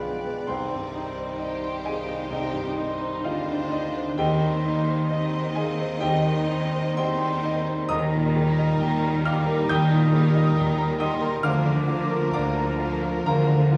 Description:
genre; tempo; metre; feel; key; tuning
classical, romantic movement for piano and orchestra; 66 BPM; 4/4; rubato; C minor, Eb major from 7.9 s; A4 = 440 Hz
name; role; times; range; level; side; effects
clear grand piano; melody; 0.0-13.8 s; C2 to G6; -27 LUFS; equal; none
rich studio violin section; melody; 0.0-13.8 s; Bb4 to Eb5; -43 LUFS; equal; none
bright clarinet; second line; 0.0-13.8 s; D4 to F4; -38 LUFS; equal; none
large flute ensemble; second line; 0.0-13.8 s; D5 to Eb6; -39 LUFS; equal; none
rich studio violin section; second line; 0.0-13.8 s; Bb3 to G4; -41 LUFS; equal; none
warm oboe; second line; 0.0-13.8 s; Bb4 to C5; -39 LUFS; equal; none
dark bassoon; accompaniment; 0.0-13.8 s; F3 to Ab3; -37 LUFS; equal; none
warm studio viola section; accompaniment; 0.0-13.8 s; F3 to Eb4; -37 LUFS; equal; none
dark French horn section; sustained chords; 0.0-13.8 s; Eb3 to C4; -36 LUFS; equal; none
rich studio cello section; bass; 0.0-13.8 s; B2 to Eb3; -34 LUFS; equal; none
warm chamber double bass section; bass; 0.0-13.8 s; B1 to Eb2; -34 LUFS; equal; none
timpani; percussion; 7.9-9.2 s; Eb3; -36 LUFS; equal; none
room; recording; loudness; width
moderate scoring stage reverb, RT60 1.8 s; studio reverb; -24 LUFS; mono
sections
0.0-13.8 A section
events
none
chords
0.5 Cm; 4.2 Cm/Eb; 7.9 Eb; 11.4 Bb/D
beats
| 0.49 1.40 2.32 3.25 | 4.19 5.12 6.02 6.99 | 7.90 8.80 9.70 10.57 | 11.44 12.35 13.28

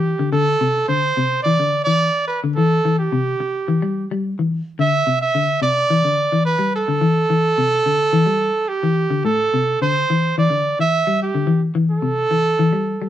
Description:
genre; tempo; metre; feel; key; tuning
afrobeat; 108 BPM; 4/4; straight; A minor; A4 = 436 Hz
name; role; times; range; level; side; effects
clear trumpet; melody; 0.0-13.1 s; G4 to E5; -18 LUFS; right 3 dB; none
clean electric guitar; arpeggios; 0.0-13.1 s; A2 to G3; -19 LUFS; left 4 dB; none
room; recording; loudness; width
light reverb; band playing live in one room; -16 LUFS; side -11 dB against mid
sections
0.0-13.1 A section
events
none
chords
0.3 Am; 1.4 Bmadd11/D (rootless); 2.6 C6; 3.7 Em; 4.8 Cadd9; 5.9 Em7; 7.0 Am; 8.1 Em7; 9.3 Am; 10.4 Em7; 11.5 Am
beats
| 0.33 0.89 1.45 2.01 | 2.56 3.12 3.68 4.24 | 4.80 5.36 5.92 6.47 | 7.03 7.59 8.15 8.70 | 9.26 9.82 10.38 10.93 | 11.49 12.05 12.60

